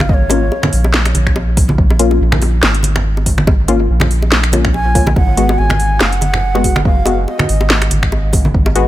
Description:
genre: deep dubstep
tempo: 142 BPM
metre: 4/4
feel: swing 56% on 16ths, half-time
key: Bb phrygian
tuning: A4 = 439 Hz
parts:
  - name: breathy bright low ney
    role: melody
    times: 0.0-0.9, 4.7-7.9 s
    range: Db5 to Ab5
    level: -21 LUFS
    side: right 1 dB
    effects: dub echo
  - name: soft dub sub bass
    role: bass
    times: 0.0-8.9 s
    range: Gb1 to Bb1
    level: -15 LUFS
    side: equal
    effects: none
  - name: garage drum kit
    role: drums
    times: 0.0-8.8 s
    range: finger snaps, hi-hat, snare drum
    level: -17 LUFS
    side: equal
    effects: none
  - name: bongos and congas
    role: percussion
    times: 0.0-8.7 s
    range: none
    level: -20 LUFS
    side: right 1 dB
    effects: dub echo
  - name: electronic kick drum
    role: drums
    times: 0.1-8.6 s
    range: none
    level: -14 LUFS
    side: equal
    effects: overdrive
  - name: filtered dub chord stab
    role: stabs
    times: 0.3-8.9 s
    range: Ab3 to Gb4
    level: -19 LUFS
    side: left 4 dB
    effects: chorus, dub echo
room: little or no reverb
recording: none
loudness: -11 LUFS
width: side -14 dB against mid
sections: 0.0-8.9 A section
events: none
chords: 0.0 Bbm; 5.2 Abm7

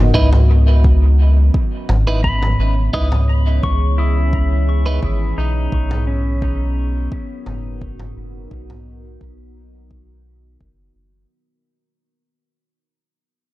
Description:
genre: ambient dub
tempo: 86 BPM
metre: 4/4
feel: straight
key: C# dorian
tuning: A4 = 440 Hz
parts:
  - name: deep dark ambient pad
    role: sustained chords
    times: 0.0-11.3 s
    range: E3 to D#5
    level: -27 LUFS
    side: right 1 dB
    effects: chorus, built-in reverb
  - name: soft dub sub bass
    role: bass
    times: 0.0-11.3 s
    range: F#1 to C#2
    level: -15 LUFS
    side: equal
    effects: none
  - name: clean electric guitar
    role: stabs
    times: 0.1-5.0 s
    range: D#4 to B4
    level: -26 LUFS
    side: right 3 dB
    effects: spring reverb, dub echo
  - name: electronic kick drum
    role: drums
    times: 0.1-10.8 s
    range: none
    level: -21 LUFS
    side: equal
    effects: none
  - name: toms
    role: drums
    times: 0.3-8.8 s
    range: none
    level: -23 LUFS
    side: equal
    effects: none
  - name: pedal steel guitar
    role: arpeggios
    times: 2.2-7.8 s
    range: C#4 to D#6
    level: -27 LUFS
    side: left 2 dB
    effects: low-pass filter, dub echo
room: small room ambience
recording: none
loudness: -14 LUFS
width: side -18 dB against mid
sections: 0.1-11.3 A section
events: fade-out 0.1-11.3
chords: 0.1 C#m7; 5.7 Bmaj7

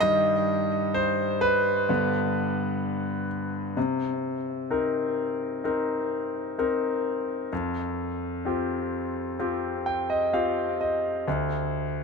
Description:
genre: pop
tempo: 64 BPM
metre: 4/4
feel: straight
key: C minor from 3.8 s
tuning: A4 = 441 Hz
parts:
  - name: bright grand piano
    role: solo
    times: 0.0-12.0 s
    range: D2 to G5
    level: -24 LUFS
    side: left 1 dB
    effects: ping-pong delay
room: light reverb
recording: none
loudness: -25 LUFS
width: side -4 dB against mid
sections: 0.0-3.8 A section; 3.8-12.0 B section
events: grand piano solo 0.0-3.8; grand piano fill 9.4-11.3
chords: 0.0 Gaug; 1.9 G; 3.8 Cm7; 7.5 Fsus2; 11.3 N.C.

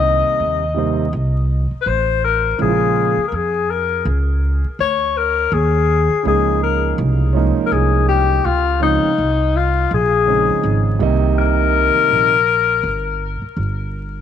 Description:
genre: hip hop, jazz-hop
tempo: 82 BPM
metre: 4/4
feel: swing 59% on 16ths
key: unclear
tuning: A4 = 440 Hz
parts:
  - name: breathy alto saxophone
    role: melody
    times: 0.0-13.5 s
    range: Eb4 to Eb5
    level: -17 LUFS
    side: left 7 dB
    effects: tape echo
  - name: dark baby grand piano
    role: accompaniment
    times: 0.0-12.3 s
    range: C3 to F4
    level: -20 LUFS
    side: right 9 dB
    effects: none
  - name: upright bass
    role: bass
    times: 0.0-14.2 s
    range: G1 to F2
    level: -19 LUFS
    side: equal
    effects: none
room: light reverb, studio ambience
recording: 1960s-style stereo with parts hard left and right, vinyl crackle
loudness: -14 LUFS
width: side -9 dB against mid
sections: 0.0-14.2 A section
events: none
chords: 0.0 Cm7; 2.6 Bbm7; 5.5 Eb9sus4; 8.4 Dbmaj9; 11.0 Cm7

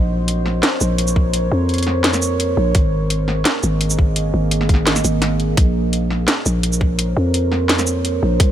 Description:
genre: half-time drum and bass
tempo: 170 BPM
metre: 4/4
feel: half-time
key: Bb minor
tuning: A4 = 440 Hz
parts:
  - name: deep dark ambient pad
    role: sustained chords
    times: 0.0-8.5 s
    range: Bb3 to Eb5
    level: -23 LUFS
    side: right 3 dB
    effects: chorus, built-in reverb, sidechain pumping
  - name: growling 808-style bass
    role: bass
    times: 0.0-8.5 s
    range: Ab1 to F2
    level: -18 LUFS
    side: equal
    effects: tube saturation
  - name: drum and bass drum kit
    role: drums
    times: 0.3-8.5 s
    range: hi-hat, shaker, snare drum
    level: -19 LUFS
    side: equal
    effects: none
  - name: electronic kick drum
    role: drums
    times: 1.2-8.5 s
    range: none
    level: -14 LUFS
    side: equal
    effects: none
room: little or no reverb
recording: none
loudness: -15 LUFS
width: side -10 dB against mid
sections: 0.0-5.6 A section; 5.6-8.5 A section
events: drop 0.0-5.6, 5.6-8.5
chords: 0.0 Bbmadd9; 2.8 Absus2; 5.6 Bbmadd9

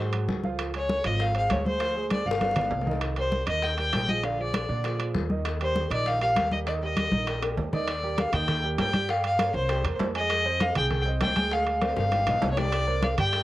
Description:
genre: Afro-Cuban jazz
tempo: 198 BPM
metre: 4/4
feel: straight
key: Eb major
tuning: A4 = 441 Hz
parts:
  - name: rich fiddle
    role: melody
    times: 0.0-13.4 s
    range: C5 to G5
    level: -27 LUFS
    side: left 1 dB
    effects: cassette tape
  - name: clear baby grand piano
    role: accompaniment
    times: 0.0-13.4 s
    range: D3 to Ab5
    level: -33 LUFS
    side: right 5 dB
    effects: cassette tape, plate reverb
  - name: upright bass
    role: bass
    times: 0.0-13.4 s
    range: G1 to Bb2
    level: -30 LUFS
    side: equal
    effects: none
  - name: congas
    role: percussion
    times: 0.1-13.4 s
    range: none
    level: -30 LUFS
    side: equal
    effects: none
  - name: timbales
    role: percussion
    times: 0.1-13.4 s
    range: none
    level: -35 LUFS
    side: right 6 dB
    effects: none
  - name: bongos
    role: percussion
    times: 0.3-13.4 s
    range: none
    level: -36 LUFS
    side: left 7 dB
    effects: none
room: light reverb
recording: home recording on cassette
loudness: -24 LUFS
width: side -15 dB against mid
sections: 0.0-7.9 A section; 7.9-13.4 B section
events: drum fill 2.1-3.0, 7.0-7.9, 11.8-12.7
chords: 0.0 Ab7; 0.6 Dbmaj7; 1.8 Dm7b5; 2.4 G7; 3.0 Cm7; 4.2 Bb7; 5.5 Eb; 7.9 Ebmaj7; 9.1 Gm7b5; 9.7 C7; 10.3 Fm9; 11.5 Dm7b5; 12.1 G7alt; 12.7 Csus2

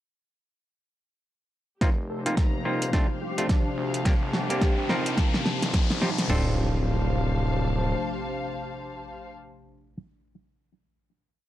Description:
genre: glitch hop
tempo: 107 BPM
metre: 4/4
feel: swing 60% on 16ths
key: D phrygian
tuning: A4 = 439 Hz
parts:
  - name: warbly tape-like pad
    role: sustained chords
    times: 2.1-9.3 s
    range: C3 to Eb4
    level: -33 LUFS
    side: left 1 dB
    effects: chorus, built-in reverb, vintage 12-bit sampler grit, sidechain pumping
  - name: clav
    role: stabs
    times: 1.8-10.0 s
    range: A3 to Bb4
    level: -31 LUFS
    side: equal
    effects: sidechain pumping, low-pass filter, tape echo
  - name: gritty driven synth bass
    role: bass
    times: 1.8-7.9 s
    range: D1 to D2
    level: -30 LUFS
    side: equal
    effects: high-pass filter
  - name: pop drum kit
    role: drums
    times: 1.8-6.5 s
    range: crash cymbal, kick drum, snare drum, toms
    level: -24 LUFS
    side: equal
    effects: overdrive
  - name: pop drum kit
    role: drums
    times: 1.8-6.3 s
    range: hi-hat, rim click, snare drum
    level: -29 LUFS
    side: equal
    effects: overdrive
  - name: riser and impact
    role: sound effects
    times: 3.6-10.0 s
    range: none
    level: -35 LUFS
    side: left 1 dB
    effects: none
  - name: dark studio string section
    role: texture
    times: 1.8-9.3 s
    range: G4 to Bb5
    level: -34 LUFS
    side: left 2 dB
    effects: sidechain pumping
  - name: sync lead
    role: melody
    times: 2.1-4.9 s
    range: D4 to A4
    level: -36 LUFS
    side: left 2 dB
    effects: ensemble chorus, tape echo
room: light reverb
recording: dry, gritty hardware recording, cassette tape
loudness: -23 LUFS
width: side -13 dB against mid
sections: 1.8-6.3 build; 6.3-8.5 final chord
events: build-up 1.8-6.3; drum fill 1.8-6.3; filter sweep on analog synth lead 1.8-6.3; riser 3.6-6.3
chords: 1.8 F7sus4; 2.9 Dm7; 4.1 Bb69; 5.2 Eb69; 6.3 Dm7

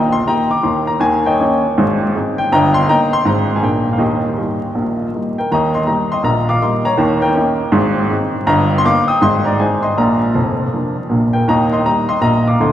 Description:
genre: jazz, stride piano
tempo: 161 BPM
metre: 4/4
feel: swing 62% on 8ths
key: Eb major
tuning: A4 = 442 Hz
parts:
  - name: clear upright piano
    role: solo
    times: 0.0-12.7 s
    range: F1 to Eb6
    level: -13 LUFS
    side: equal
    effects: none
room: wet cathedral reverb, RT60 4.6 s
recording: recorded in a church or concert hall, vinyl crackle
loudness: -13 LUFS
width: side -11 dB against mid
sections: 0.0-5.5 A section; 5.5-12.7 A section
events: none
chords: 0.0 Eb; 1.0 Eb7; 1.8 Abmaj7; 2.5 Eb/G; 3.3 Ab; 3.6 Bb7; 4.0 Eb; 7.0 Eb7; 7.7 Abmaj7; 8.5 Eb/G; 9.2 Ab; 10.0 Bb; 11.5 Eb

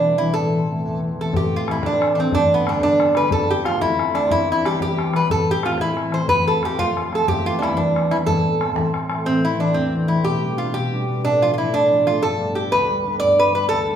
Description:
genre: celtic folk, Celtic jig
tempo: 121 BPM (dotted quarters)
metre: 6/8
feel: straight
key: A minor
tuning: A4 = 440 Hz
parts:
  - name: lap resonator guitar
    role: melody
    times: 0.0-14.0 s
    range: B3 to D5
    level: -18 LUFS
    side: right 1 dB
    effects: none
  - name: concert harp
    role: accompaniment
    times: 0.0-14.0 s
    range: D2 to D4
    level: -23 LUFS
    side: left 1 dB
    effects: none
  - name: bodhran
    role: percussion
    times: 1.3-9.2 s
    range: none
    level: -26 LUFS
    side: left 2 dB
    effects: none
room: wet large studio reverb, RT60 1.2 s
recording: band playing live in one room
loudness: -17 LUFS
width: side -9 dB against mid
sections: 0.0-1.3 A section; 1.3-9.3 A section; 9.3-14.0 B section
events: none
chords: 0.4 Am; 2.3 G; 3.3 F; 4.3 Em; 5.3 Am; 6.3 F; 7.3 Em; 8.3 Am; 10.2 G/B; 11.2 Dm/A; 12.2 G

